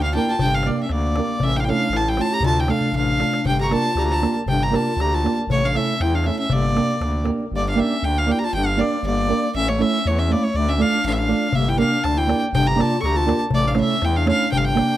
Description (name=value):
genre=balkan folk, Balkan wedding band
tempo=119 BPM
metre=2/4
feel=straight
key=G dorian sharp4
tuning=A4 = 440 Hz
part: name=rich violin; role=melody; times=0.0-15.0 s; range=C#5 to C#6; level=-23 LUFS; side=equal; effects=none
part: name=dark clarinet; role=second line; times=0.0-15.0 s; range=A3 to A4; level=-26 LUFS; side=left 5 dB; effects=none
part: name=growling FM bass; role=bass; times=0.0-14.8 s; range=G1 to E2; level=-24 LUFS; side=equal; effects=none
part: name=darbuka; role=percussion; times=0.0-7.5, 11.5-15.0 s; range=none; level=-25 LUFS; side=left 2 dB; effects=none
part: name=flamenco guitar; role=accompaniment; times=0.1-14.9 s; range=A3 to D5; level=-24 LUFS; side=right 4 dB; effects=none
room=light reverb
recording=close, detailed microphones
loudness=-17 LUFS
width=side -13 dB against mid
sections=0.0-7.5 A section; 7.5-15.0 A section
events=speeding up 0.0-15.0; drum fill 2.8-3.5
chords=0.0 Gm; 1.4 A; 2.4 Dm; 3.5 Gm; 5.5 A; 6.5 Gm; 9.5 A; 10.5 Dm; 11.5 Gm; 13.5 A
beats=| 0.40 0.91 | 1.42 1.93 | 2.44 2.95 | 3.46 3.97 | 4.48 4.99 | 5.49 6.00 | 6.51 7.01 | 7.52 8.02 | 8.52 9.03 | 9.53 10.03 | 10.53 11.03 | 11.53 12.03 | 12.53 13.02 | 13.52 14.02 | 14.52